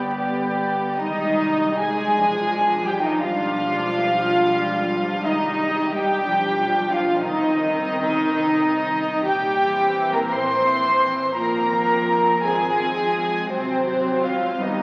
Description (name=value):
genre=classical, slow romantic movement for string orchestra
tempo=48-60 BPM (dotted quarters)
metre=6/8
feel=rubato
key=C minor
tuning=A4 = 441 Hz
part: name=warm symphonic violin section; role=melody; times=0.0-14.8 s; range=C5 to C6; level=-27 LUFS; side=equal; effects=none
part: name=warm symphonic violin section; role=second line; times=0.0-14.8 s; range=C4 to C5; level=-24 LUFS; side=equal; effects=none
part: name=dark symphonic viola section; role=accompaniment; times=0.0-14.8 s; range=Eb3 to Eb4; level=-30 LUFS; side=equal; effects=none
part: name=dark symphonic double bass section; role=bass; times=0.0-14.8 s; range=G1 to C2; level=-41 LUFS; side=equal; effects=none
part: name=rich studio cello section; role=bass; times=0.0-14.8 s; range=G2 to C4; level=-34 LUFS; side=equal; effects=none
room=wet scoring stage reverb, RT60 1.7 s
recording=very old 78 rpm record, vinyl crackle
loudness=-21 LUFS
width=mono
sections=0.0-1.0 A section; 1.0-14.8 B section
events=none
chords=0.0 G; 1.0 Cm; 2.2 Bdim7; 3.2 G7/B; 5.3 Cm; 6.3 G7/B; 7.3 Cm; 9.3 C7/Bb; 11.4 Fm/Ab; 13.5 Ab7